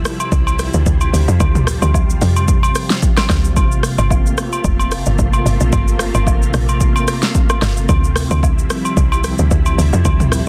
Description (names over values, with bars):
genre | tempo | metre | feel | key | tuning
amapiano | 111 BPM | 4/4 | swing 55% on 16ths | G dorian | A4 = 440 Hz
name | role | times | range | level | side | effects
soft string machine | sustained chords | 0.0-10.5 s | C3 to F4 | -24 LUFS | equal | ensemble chorus
deep house drum kit | drums | 0.1-10.5 s | hi-hat, kick drum, rim click, shaker, snare drum, toms | -18 LUFS | equal | soft clipping on snare
agogo bells and woodblock | percussion | 0.2-10.2 s | none | -26 LUFS | equal | none
woody log drum bass | bass | 0.3-10.4 s | F1 to F2 | -18 LUFS | equal | none
room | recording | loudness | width
little or no reverb | dense, heavily limited modern master | -15 LUFS | mono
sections
0.0-10.5 A section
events
none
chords
0.0 Dm11; 3.6 Gm11; 7.9 Dm11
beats
0.32 0.86 | 1.40 1.94 2.48 3.02 | 3.57 4.11 4.65 5.19 | 5.73 6.27 6.81 7.35 | 7.89 8.43 8.97 9.51 | 10.05